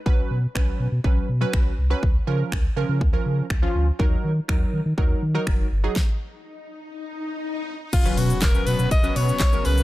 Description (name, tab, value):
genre	dance-pop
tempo	122 BPM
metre	4/4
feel	straight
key	unclear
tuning	A4 = 441 Hz
part	funky polysynth comp	accompaniment	0.1-9.8 s	F3 to B4	-28 LUFS	right 1 dB	chorus, sidechain pumping
part	warm sub bass	bass	0.1-9.8 s	Gb1 to Eb3	-23 LUFS	equal	sidechain pumping
part	pop drum kit	drums	0.1-9.8 s	crash cymbal, finger snaps, handclaps, hi-hat, kick drum, shaker, snare drum	-22 LUFS	equal	none
part	swell and impact	sound effects	6.5-9.8 s	none	-31 LUFS	left 1 dB	none
part	bright alto saxophone	melody	7.9-9.8 s	F4 to Eb5	-26 LUFS	left 3 dB	none
part	supersaw pad	sustained chords	8.3-9.8 s	C#3 to B3	-32 LUFS	right 2 dB	sidechain pumping
part	tambourine	percussion	7.9-9.8 s	none	-43 LUFS	right 9 dB	none
room	little or no reverb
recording	none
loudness	-20 LUFS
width	side -17 dB against mid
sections	0.0-7.9 A section; 7.9-9.8 B section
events	stop 6.0-7.9; swell 6.5-7.9; impact 7.9-9.8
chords	0.1 Bsus2; 2.0 Db6; 4.0 Ebm; 6.0 N.C.; 7.9 Bsus2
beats	| 0.06 0.55 1.04 1.53 | 2.03 2.52 3.01 3.50 | 3.99 4.49 4.98 5.47 | 5.96 6.45 6.95 7.44 | 7.93 8.42 8.91 9.40